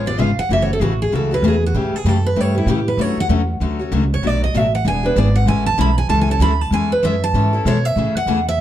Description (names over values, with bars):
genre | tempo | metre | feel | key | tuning
acoustic string swing (jazz manouche) | 193 BPM | 4/4 | swing 60% on 8ths | A major | A4 = 440 Hz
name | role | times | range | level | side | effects
picked steel-string acoustic guitar | melody | 0.0-8.6 s | E4 to B5 | -20 LUFS | right 2 dB | none
picked steel-string acoustic guitar | accompaniment | 0.0-8.4 s | B2 to A4 | -21 LUFS | left 4 dB | none
upright bass | bass | 0.0-8.6 s | E1 to B2 | -18 LUFS | right 1 dB | none
room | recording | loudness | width
moderate club reverb, RT60 0.8 s | dark, warm production | -15 LUFS | side -12 dB against mid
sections
0.0-8.0 A section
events
steel-string acoustic guitar solo 0.0-8.0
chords
0.0 C#7; 0.5 F#m7; 1.7 A7; 3.0 Dmaj7; 4.2 Bm7; 4.9 E7; 5.5 Amaj7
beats
0.20 | 0.51 0.82 1.13 1.44 | 1.75 2.06 2.37 2.68 | 2.99 3.30 3.61 3.92 | 4.23 4.54 4.85 5.17 | 5.48 5.79 6.10 6.41 | 6.72 7.03 7.34 7.65 | 7.96 8.28 8.59